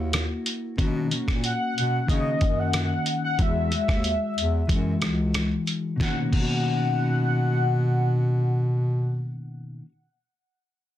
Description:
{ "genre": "indie pop, bedroom pop", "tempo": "92 BPM", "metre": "4/4", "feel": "straight", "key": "B major", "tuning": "A4 = 440 Hz", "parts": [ { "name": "mellow electric guitar", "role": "accompaniment", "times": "0.0-9.9 s", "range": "B2 to F#4", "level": "-27 LUFS", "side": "left 2 dB", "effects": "analog chorus, vibrato effect" }, { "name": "warm bass clarinet", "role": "bass", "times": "0.0-9.4 s", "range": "C#2 to C#3", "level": "-26 LUFS", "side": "equal", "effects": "none" }, { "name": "lo-fi sampler-style drum kit", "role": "drums", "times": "0.1-6.5 s", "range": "crash cymbal, hi-hat, kick drum, rim click, snare drum", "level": "-26 LUFS", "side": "equal", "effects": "none" }, { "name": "warm velvety synth lead", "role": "melody", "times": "1.4-9.4 s", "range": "D#5 to F#5", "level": "-29 LUFS", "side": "left 2 dB", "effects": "lush chorus, tape echo" } ], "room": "light reverb", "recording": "dense, heavily limited modern master", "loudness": "-22 LUFS", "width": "side -12 dB against mid", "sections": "0.0-6.0 A section; 6.0-8.6 B section", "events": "none", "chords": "0.0 F#7; 0.8 Bmaj9; 3.4 Eadd9; 6.0 Bmaj9", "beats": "0.12 | 0.78 1.43 2.08 2.73 | 3.39 4.04 4.69 5.34 | 6.00 6.65 7.30 7.96" }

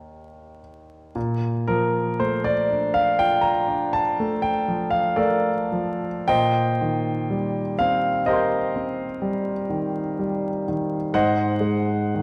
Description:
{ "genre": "classical, impressionist solo piano", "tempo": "50-65 BPM", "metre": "5/4", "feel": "rubato", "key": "Bb major", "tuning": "A4 = 439 Hz", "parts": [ { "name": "warm concert grand piano", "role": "solo", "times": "0.0-12.2 s", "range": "Ab2 to G6", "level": "-23 LUFS", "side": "equal", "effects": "none" } ], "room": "wet scoring stage reverb, RT60 1.7 s", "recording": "vinyl crackle", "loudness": "-23 LUFS", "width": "mono", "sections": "0.0-1.2 A section; 1.2-12.2 A section", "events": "none", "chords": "0.0 Ebmaj7; 1.2 Bbmaj7; 6.3 Cm7/Bb; 11.1 Ab7", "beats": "0.01 | 1.15 2.20 3.21 4.20 5.18 | 6.30 7.30 8.27 9.22 10.18 | 11.13 12.14" }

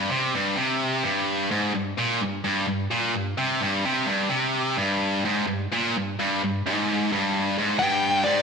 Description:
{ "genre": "rock", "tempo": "128 BPM", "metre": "4/4", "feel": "straight", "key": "G minor", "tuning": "A4 = 440 Hz", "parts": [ { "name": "tight distorted guitar", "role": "riff", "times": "0.0-8.4 s", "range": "G2 to C3", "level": "-22 LUFS", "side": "equal", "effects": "distortion" }, { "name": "dark smooth lead guitar", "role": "melody", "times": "7.8-8.4 s", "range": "D5 to G5", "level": "-21 LUFS", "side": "left 2 dB", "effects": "overdrive" } ], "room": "wet lush hall reverb, RT60 1.6 s, digital ambience", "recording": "bright 1980s-style digital production", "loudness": "-22 LUFS", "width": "side -5 dB against mid", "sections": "0.0-7.8 A section", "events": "none", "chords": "0.0 N.C.; 7.8 G5", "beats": "| 0.33 0.80 1.27 1.74 | 2.21 2.67 3.14 3.61 | 4.08 4.54 5.01 5.48 | 5.95 6.41 6.88 7.34 | 7.81 8.28" }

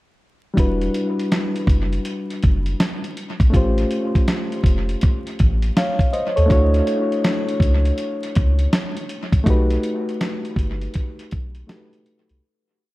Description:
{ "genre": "lo-fi hip hop", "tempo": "81 BPM", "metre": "4/4", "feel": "swing 64% on 16ths", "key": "E dorian", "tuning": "A4 = 439 Hz", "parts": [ { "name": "barky reed electric piano", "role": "accompaniment", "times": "0.5-12.5 s", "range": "G3 to E#5", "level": "-23 LUFS", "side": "left 1 dB", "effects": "overdrive, dub echo" }, { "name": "soft dub sub bass", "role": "bass", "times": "0.6-12.4 s", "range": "E1 to D#2", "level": "-20 LUFS", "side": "equal", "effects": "none" }, { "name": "dusty soul sampler-style drum kit", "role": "drums", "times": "0.6-12.4 s", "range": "hi-hat, kick drum, snare drum", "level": "-20 LUFS", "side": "equal", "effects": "none" } ], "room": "digital ambience", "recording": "echo-heavy mix, vinyl crackle", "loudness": "-17 LUFS", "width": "side -18 dB against mid", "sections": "0.6-12.4 A section", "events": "fade-out 9.5-12.4", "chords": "0.6 Em9; 3.5 A7alt; 6.5 Dmaj7; 9.5 B7b13", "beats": "| 0.57 1.31 2.05 2.79 | 3.53 4.27 5.01 5.75 | 6.50 7.24 7.98 8.72 | 9.46 10.20 10.94 11.68" }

